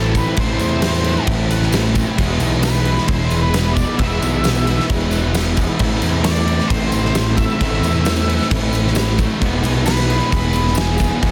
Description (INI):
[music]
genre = rock, shoegaze and dream pop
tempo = 133 BPM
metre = 4/4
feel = straight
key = A harmonic minor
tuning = A4 = 441 Hz
[part]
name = octave-fuzz lead guitar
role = melody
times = 0.0-11.3 s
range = G#4 to E5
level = -28 LUFS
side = equal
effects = distortion, analog delay
[part]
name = soft string machine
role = sustained chords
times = 0.0-11.3 s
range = C4 to E6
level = -33 LUFS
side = equal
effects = none
[part]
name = direct-recorded clean electric guitar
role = arpeggios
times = 0.0-11.3 s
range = G#3 to B4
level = -34 LUFS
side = equal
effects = none
[part]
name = overdriven electric guitar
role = riff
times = 0.0-11.3 s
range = E2 to E4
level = -26 LUFS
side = equal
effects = reverse reverb
[part]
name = thick fuzz guitar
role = riff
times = 0.0-11.3 s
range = E2 to A3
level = -24 LUFS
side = equal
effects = distortion, analog chorus
[part]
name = growling picked electric bass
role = bass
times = 0.0-11.3 s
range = E1 to E2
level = -22 LUFS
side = equal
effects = overdrive
[part]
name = huge arena drum kit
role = drums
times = 0.1-11.3 s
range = crash cymbal, kick drum, snare drum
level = -22 LUFS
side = equal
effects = none
[part]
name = tambourine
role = percussion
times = 0.2-11.2 s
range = none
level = -38 LUFS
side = equal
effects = none
[sound]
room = small room ambience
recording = dense, heavily limited modern master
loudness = -17 LUFS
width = mono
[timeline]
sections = 0.0-11.3 A section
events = none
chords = 0.0 Amadd9; 2.2 E; 5.8 Amadd9; 9.4 E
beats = | 0.38 0.83 1.28 1.73 | 2.18 2.63 3.08 3.54 | 3.99 4.44 4.89 5.34 | 5.79 6.25 6.70 7.15 | 7.60 8.05 8.51 8.96 | 9.41 9.86 10.31 10.76 | 11.22